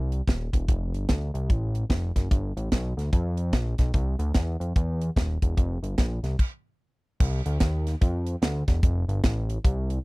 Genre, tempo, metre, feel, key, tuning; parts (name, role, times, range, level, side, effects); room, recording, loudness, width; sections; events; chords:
uptempo gospel; 147 BPM; 4/4; swing 63% on 8ths; A4 = 440 Hz
fat analog bass; bass; 0.0-10.0 s; Eb1 to F2; -26 LUFS; equal
crisp fusion drum kit; drums; 0.1-10.0 s; crash cymbal, hi-hat, kick drum, snare drum; -23 LUFS; equal
little or no reverb; dry, close 1970s-style studio recording; -23 LUFS; side -24 dB against mid
0.0-7.2 A section; 7.2-10.0 B section
stop 6.4-7.2